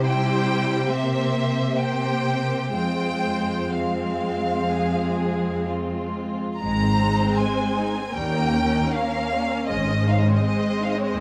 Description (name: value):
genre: classical, slow romantic movement for string orchestra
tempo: 59-84 BPM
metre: 4/4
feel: rubato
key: F minor, Ab major from 6.6 s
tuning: A4 = 441 Hz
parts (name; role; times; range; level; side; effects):
- rich studio violin section; melody; 0.0-11.2 s; C5 to Bb5; -29 LUFS; equal; none
- rich studio violin section; second line; 0.0-11.2 s; G3 to C5; -33 LUFS; equal; none
- warm studio viola section; accompaniment; 0.0-11.2 s; G3 to E4; -28 LUFS; equal; none
- warm studio cello section; bass; 0.0-11.2 s; Eb2 to C3; -28 LUFS; equal; none
- rich studio double bass section; bass; 6.6-11.2 s; Ab1 to Eb2; -29 LUFS; equal; none
room: moderate stone room reverb, RT60 1.1 s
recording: close, detailed microphones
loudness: -23 LUFS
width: mono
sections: 0.0-6.6 A section; 6.6-11.2 B section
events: none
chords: 0.0 C; 0.9 C7; 2.7 Fm; 6.6 Ab; 8.2 Eb7; 9.7 Ab